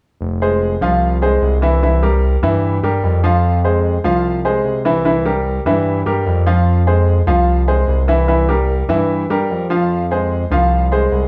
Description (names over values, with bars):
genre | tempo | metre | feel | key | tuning
latin, Cuban son and guajira | 149 BPM | 4/4 | straight | F minor | A4 = 440 Hz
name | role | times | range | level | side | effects
smooth gliding synth bass | bass | 0.2-11.3 s | F1 to G2 | -18 LUFS | equal | none
clear grand piano | arpeggios | 0.4-11.3 s | E3 to F5 | -18 LUFS | equal | none
room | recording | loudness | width
moderate studio reverb, RT60 1.0 s | small room ambience | -16 LUFS | mono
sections
0.2-11.3 A section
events
none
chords
0.2 Fm; 1.8 C7; 3.4 Fm; 5.1 C7; 6.7 Fm; 8.3 C7; 9.9 Fm